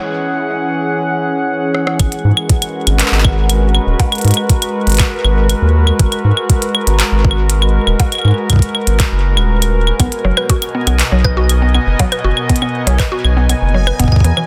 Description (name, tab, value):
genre	IDM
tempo	120 BPM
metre	4/4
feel	straight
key	G# minor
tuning	A4 = 439 Hz
part	warbly tape-like pad	sustained chords	0.0-14.5 s	B2 to F#5	-21 LUFS	equal	chorus, built-in reverb
part	glitchy drum kit	drums	1.7-14.5 s	claves, handclaps, hi-hat, percussion blips, rim click	-20 LUFS	equal	overdrive, delay
part	round analog bass	bass	2.0-14.3 s	D#1 to G#2	-15 LUFS	equal	none
part	electronic kick drum	drums	2.0-14.2 s	none	-15 LUFS	equal	overdrive
part	mallet-like synth pluck	arpeggios	10.0-14.4 s	E3 to B4	-22 LUFS	equal	chorus, dub echo
part	bubbling stepped-filter texture	texture	10.3-14.5 s	G#5	-30 LUFS	equal	chorus, built-in reverb, sidechain pumping
room	light reverb, digital ambience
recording	dense, heavily limited modern master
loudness	-14 LUFS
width	mono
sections	0.0-2.0 A section; 2.0-14.5 B section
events	break 0.0-2.0; drum fill 1.7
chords	0.0 E69; 2.0 G#m9; 10.0 Bmaj7